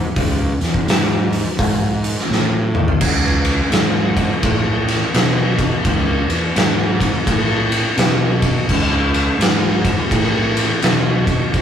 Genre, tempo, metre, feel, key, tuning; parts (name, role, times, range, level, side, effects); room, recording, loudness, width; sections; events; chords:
stoner and doom metal; 84 BPM; 4/4; swing 63% on 8ths; C# minor; A4 = 445 Hz
fuzz fingered electric bass; bass; 0.2-11.6 s; C#2 to B2; -19 LUFS; equal; overdrive
oversized low-tuned drum kit; drums; 0.2-11.6 s; crash cymbal, hi-hat, kick drum, ride cymbal, snare drum, toms; -16 LUFS; equal
light reverb; rough rehearsal-room recording, warm saturation; -14 LUFS; side -8 dB against mid
0.0-3.0 A section; 3.0-11.6 B section
drum fill 2.3-3.0